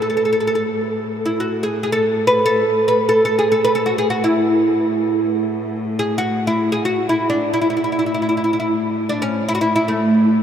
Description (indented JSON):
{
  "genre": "Persian modal ensemble",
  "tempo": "free time",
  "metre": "none",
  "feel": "none",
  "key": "unclear",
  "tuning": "A4 = 441 Hz",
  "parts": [
    { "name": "oud", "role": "melody", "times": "0.0-10.4 s", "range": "A3 to B4", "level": "-16 LUFS", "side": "equal", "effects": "none" },
    { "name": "rich cello", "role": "drone", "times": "0.0-10.4 s", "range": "A2", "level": "-25 LUFS", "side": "left 1 dB", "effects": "none" }
  ],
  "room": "wet huge ambient reverb, RT60 7.7 s",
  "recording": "in a vast, echoing space",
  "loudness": "-16 LUFS",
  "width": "side -9 dB against mid",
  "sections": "0.0-10.4 A section",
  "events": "none",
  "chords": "none"
}